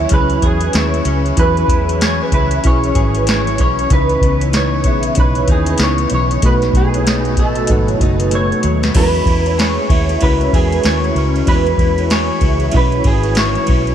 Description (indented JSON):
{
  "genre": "indie pop, bedroom pop",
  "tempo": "95 BPM",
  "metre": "4/4",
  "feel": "swing 60% on 16ths",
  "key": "E major",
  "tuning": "A4 = 439 Hz",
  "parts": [
    { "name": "electric guitar through a small old amp", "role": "melody", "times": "0.0-13.9 s", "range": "G#4 to C#5", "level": "-20 LUFS", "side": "equal", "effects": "ensemble chorus, tape echo" },
    { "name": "vibraphone with soft mallets", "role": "second line", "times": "0.0-13.5 s", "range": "D#4 to E5", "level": "-23 LUFS", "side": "right 3 dB", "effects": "ensemble chorus, tape echo" },
    { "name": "clean electric guitar", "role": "accompaniment", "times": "0.0-13.9 s", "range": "B2 to G#4", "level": "-23 LUFS", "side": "left 6 dB", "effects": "ensemble chorus, warbly pitch drift" },
    { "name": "soft electric-piano-like synth keys", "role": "accompaniment", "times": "0.0-13.9 s", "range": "D#3 to B4", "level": "-21 LUFS", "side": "right 2 dB", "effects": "chorus" },
    { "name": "vintage muted fingered electric bass", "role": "bass", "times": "0.0-13.9 s", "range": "F#1 to E2", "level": "-18 LUFS", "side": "equal", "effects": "none" },
    { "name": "soft vintage rhythm box", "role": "drums", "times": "0.1-13.9 s", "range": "crash cymbal, hi-hat, kick drum, ride cymbal, snare drum", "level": "-17 LUFS", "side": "equal", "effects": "overdrive" }
  ],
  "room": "light reverb, digital ambience",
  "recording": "none",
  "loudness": "-12 LUFS",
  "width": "side -10 dB against mid",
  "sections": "0.0-9.0 A section; 9.0-13.9 A section",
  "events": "drum fill 8.3-9.0",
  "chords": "0.0 E69; 3.9 C#m9; 6.4 B7; 9.0 E69",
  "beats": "0.11 0.75 | 1.38 2.01 2.64 3.27 | 3.90 4.54 5.17 5.80 | 6.43 7.06 7.69 8.32 | 8.96 9.59 10.22 10.85 | 11.48 12.11 12.74 13.37"
}